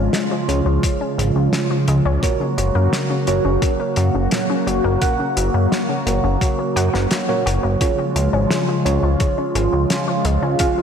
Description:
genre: synthwave.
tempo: 86 BPM.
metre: 4/4.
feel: straight.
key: Db major.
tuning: A4 = 442 Hz.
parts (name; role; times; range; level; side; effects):
phased analog pad; sustained chords; 0.0-10.8 s; Db3 to Gb4; -21 LUFS; equal; phaser, chorus, sidechain pumping.
analog pluck; arpeggios; 0.0-10.8 s; Bb2 to Gb4; -26 LUFS; left 4 dB; chorus, ping-pong delay.
chorused synth bass; bass; 0.0-10.6 s; Gb1 to Gb2; -19 LUFS; equal; tube saturation.
cloth-damped thuddy drum kit; drums; 0.1-10.7 s; hi-hat, snare drum; -25 LUFS; left 1 dB; none.
mellow FM electric piano; stabs; 0.5-10.8 s; F4 to Gb5; -24 LUFS; right 4 dB; chorus, ping-pong delay.
electronic kick drum; drums; 0.8-10.7 s; none; -20 LUFS; equal; overdrive.
room: moderate lush hall reverb, RT60 1.8 s, small room ambience.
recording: dreamy mix soaked in reverb.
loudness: -16 LUFS.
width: side -7 dB against mid.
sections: 0.0-10.8 A section.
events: none.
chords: 0.0 Db; 2.2 Gb; 7.8 Db.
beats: 0.14 0.83 1.53 | 2.23 2.93 3.62 4.32 | 5.02 5.72 6.42 7.11 | 7.81 8.51 9.21 9.90 | 10.60.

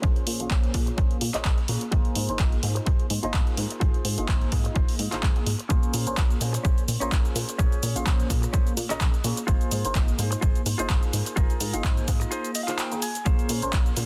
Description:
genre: filtered disco house.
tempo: 127 BPM.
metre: 4/4.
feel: swing 55% on 16ths.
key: Bb minor.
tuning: A4 = 445 Hz.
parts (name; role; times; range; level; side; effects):
dark baby grand piano; accompaniment; 0.0-14.1 s; Bb3 to C6; -35 LUFS; equal; phaser, sidechain pumping, low-pass filter.
direct-recorded clean electric guitar; riff; 0.0-14.0 s; Db4 to Ab5; -37 LUFS; equal; sidechain pumping, low-pass filter.
plucky analog bass; bass; 0.0-14.1 s; Ab1 to Bb2; -32 LUFS; equal; sidechain pumping, low-pass filter.
electronic kick drum; drums; 0.0-13.8 s; none; -26 LUFS; equal; none.
punchy analog drum machine; drums; 0.0-14.1 s; cabasa, handclaps, hi-hat; -34 LUFS; equal; sidechain pumping on hats, sidechain pumping on perc.
room: little or no reverb.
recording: dense, heavily limited modern master.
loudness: -25 LUFS.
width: mono.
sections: 0.0-14.1 A section.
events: filter sweep 0.0-14.1; break 12.3-13.3; clean electric guitar fill 12.3-13.3.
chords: 0.0 Bbm9; 1.9 Ab6; 5.7 Bbm9; 9.5 Ab6; 13.3 Bbm9.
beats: | 0.03 0.51 0.98 1.45 | 1.92 2.40 2.87 3.34 | 3.81 4.29 4.76 5.23 | 5.70 6.17 6.65 7.12 | 7.59 8.06 8.54 9.01 | 9.48 9.95 10.43 10.90 | 11.37 11.84 12.32 12.79 | 13.26 13.73.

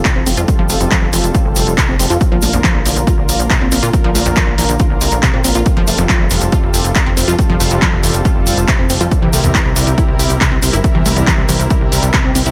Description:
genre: uplifting trance.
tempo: 139 BPM.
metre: 4/4.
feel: straight.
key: F major.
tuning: A4 = 440 Hz.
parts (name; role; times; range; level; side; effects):
punchy analog drum machine; drums; 0.0-12.5 s; handclaps, hi-hat; -20 LUFS; equal; none.
unison pluck; arpeggios; 0.1-12.5 s; E2 to F4; -23 LUFS; equal; sidechain pumping, dub echo.
electronic kick drum; drums; 0.1-12.2 s; none; -17 LUFS; equal; overdrive.
egg shaker; percussion; 0.1-12.5 s; none; -26 LUFS; equal; none.
plucky analog bass; bass; 0.2-12.5 s; F1 to Bb2; -20 LUFS; equal; sidechain pumping.
lush unison pad; sustained chords; 0.3-12.5 s; C3 to Bb4; -22 LUFS; equal; chorus, sidechain pumping.
room: light reverb.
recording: none.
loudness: -13 LUFS.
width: mono.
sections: 0.0-12.5 A section.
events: filter sweep on analog synth pad 0.0-12.5.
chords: 0.0 Fadd9; 2.2 Bb; 5.7 Fadd9; 9.1 C7.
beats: 0.05 | 0.48 0.91 1.34 1.78 | 2.21 2.64 3.07 3.50 | 3.94 4.37 4.80 5.23 | 5.66 6.09 6.53 6.96 | 7.39 7.82 8.25 8.68 | 9.12 9.55 9.98 10.41 | 10.84 11.27 11.71 12.14.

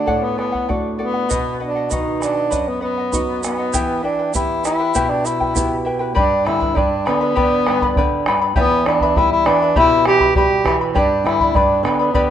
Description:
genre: andean folk, Andean ensemble.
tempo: 100 BPM.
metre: 2/4.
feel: straight.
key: E minor.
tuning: A4 = 440 Hz.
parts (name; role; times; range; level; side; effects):
mellow tenor saxophone; melody; 0.0-12.3 s; B3 to G4; -18 LUFS; equal; none.
charango; accompaniment; 0.0-12.3 s; E4 to B5; -22 LUFS; left 5 dB; none.
flamenco guitar; accompaniment; 0.0-12.3 s; E2 to G4; -23 LUFS; right 4 dB; none.
bombo; percussion; 0.1-12.3 s; none; -23 LUFS; equal; none.
tube shaker; percussion; 1.3-5.7 s; none; -26 LUFS; right 9 dB; none.
room: light reverb, small room ambience.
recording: rough home demo mix, nothing above 11.0 kHz.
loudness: -15 LUFS.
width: side -10 dB against mid.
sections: 0.0-6.2 A section; 6.2-12.3 B section.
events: speeding up 0.0-12.3.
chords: 0.0 D; 1.3 B; 3.7 Em; 6.2 G; 8.6 Em; 11.0 G.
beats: | 0.08 0.69 | 1.30 1.92 | 2.53 3.13 | 3.74 4.35 | 4.96 5.56 | 6.16 6.77 | 7.37 7.97 | 8.57 9.17 | 9.76 10.36 | 10.96 11.55 | 12.15.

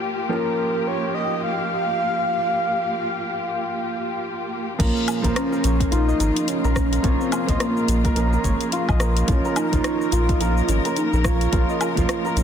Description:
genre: organic downtempo.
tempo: 107 BPM.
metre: 4/4.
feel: swing 59% on 16ths.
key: Bb dorian.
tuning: A4 = 437 Hz.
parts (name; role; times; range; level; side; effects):
felt-muted upright piano; accompaniment; 0.0-12.4 s; F3 to C6; -29 LUFS; right 4 dB; sidechain pumping.
muted studio string section; sustained chords; 0.0-12.4 s; Db3 to Bb4; -29 LUFS; left 2 dB; sidechain pumping.
breathy flute-like synth lead; melody; 0.3-12.4 s; Bb3 to F5; -24 LUFS; equal; wide subtle chorus, tape echo.
santur; arpeggios; 4.8-12.4 s; F4 to Eb5; -29 LUFS; left 2 dB; tape echo.
warm sub bass; bass; 4.8-12.4 s; Ab1 to Bb1; -21 LUFS; equal; none.
deep house drum kit; drums; 4.8-12.4 s; crash cymbal, hi-hat, rim click, shaker, woodblock; -28 LUFS; left 2 dB; soft clipping on snare.
electronic kick drum; drums; 4.8-12.1 s; none; -24 LUFS; equal; none.
room: moderate lush hall reverb, RT60 2.5 s.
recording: dense, heavily limited modern master.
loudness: -19 LUFS.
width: side -8 dB against mid.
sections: 0.0-4.8 A section; 4.8-12.4 B section.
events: none.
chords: 0.0 Bbm.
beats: | 0.31 0.87 1.43 1.99 | 2.55 3.12 3.67 4.24 | 4.80 5.36 5.92 6.48 | 7.04 7.60 8.16 8.72 | 9.28 9.84 10.40 10.96 | 11.53 12.09.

